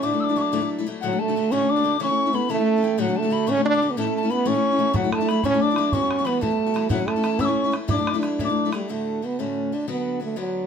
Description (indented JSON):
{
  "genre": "celtic folk, Celtic jig",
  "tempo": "122 BPM (dotted quarters)",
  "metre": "6/8",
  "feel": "straight",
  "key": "D major",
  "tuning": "A4 = 441 Hz",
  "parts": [
    { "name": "warm French horn", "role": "melody", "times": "0.0-10.7 s", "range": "F#3 to E4", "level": "-22 LUFS", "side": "right 4 dB", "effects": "none" },
    { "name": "hollow wooden whistle", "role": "second line", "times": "0.0-8.7 s", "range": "F#5 to E6", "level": "-26 LUFS", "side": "left 6 dB", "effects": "none" },
    { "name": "picked steel-string acoustic guitar", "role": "accompaniment", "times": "0.0-10.7 s", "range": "D2 to F#4", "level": "-26 LUFS", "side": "left 7 dB", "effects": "none" },
    { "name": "bodhran", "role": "percussion", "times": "4.9-8.8 s", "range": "none", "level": "-28 LUFS", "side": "right 1 dB", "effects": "none" }
  ],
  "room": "moderate small room reverb, RT60 0.5 s",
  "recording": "minimal, uncompressed stereo recording",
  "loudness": "-20 LUFS",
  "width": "side -7 dB against mid",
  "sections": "0.0-1.0 A section; 1.0-8.9 A section; 8.9-10.7 B section",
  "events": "none",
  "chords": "0.0 Dadd9; 1.0 D; 2.0 A/C#; 3.0 D; 4.0 A; 4.9 Dadd9; 5.9 Emadd9; 6.9 A; 7.9 Dadd9; 8.9 D; 9.9 Bm/D"
}